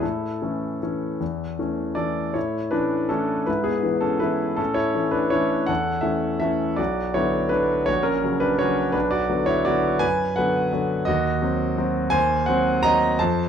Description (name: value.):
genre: classical, piano waltz.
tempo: 148-178 BPM.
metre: 3/4.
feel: rubato.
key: A major.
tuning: A4 = 440 Hz.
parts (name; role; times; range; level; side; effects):
clear concert grand piano; solo; 0.0-13.5 s; A#1 to Bb5; -20 LUFS; equal; none.
room: moderate large studio reverb, RT60 1.2 s.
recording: dark, warm production.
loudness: -20 LUFS.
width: side -8 dB against mid.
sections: 0.0-2.4 A section; 2.4-13.5 B section.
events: none.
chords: 0.0 A; 3.5 E/G#; 4.6 A; 6.8 Bm; 7.9 F#/A#; 8.9 Bm; 11.1 Cdim/Eb.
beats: | 0.03 0.42 0.82 | 1.20 1.59 1.97 | 2.35 2.73 3.11 | 3.47 3.83 4.22 | 4.59 4.96 5.33 | 5.69 6.05 6.43 | 6.79 7.15 7.52 | 7.89 8.24 8.60 | 8.94 9.30 9.66 | 10.02 10.37 10.72 | 11.08 11.43 11.78 | 12.13 12.47 12.83 | 13.19.